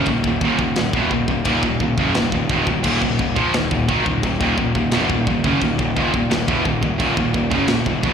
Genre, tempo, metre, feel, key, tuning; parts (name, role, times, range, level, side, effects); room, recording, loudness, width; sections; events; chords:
heavy metal; 87 BPM; 4/4; straight; Eb minor; A4 = 440 Hz
distorted electric guitar; riff; 0.0-8.1 s; Eb2 to F3; -23 LUFS; right 10 dB; overdrive, slapback echo
scooped high-gain guitar; riff; 0.0-8.1 s; Eb2 to F3; -24 LUFS; left 12 dB; distortion, slapback echo
scooped high-gain guitar; riff; 0.0-8.1 s; Eb2 to F3; -23 LUFS; equal; distortion, slapback echo
fuzz picked electric bass; bass; 0.0-8.1 s; Eb1 to Bb1; -23 LUFS; equal; overdrive
tight metal drum kit; drums; 0.1-8.1 s; china cymbal, crash cymbal, kick drum, snare drum; -24 LUFS; left 1 dB
little or no reverb; live gig heard through the venue's PA, recital hall reverb; -16 LUFS; side -7 dB against mid
0.0-8.1 A section
0.0 Ebm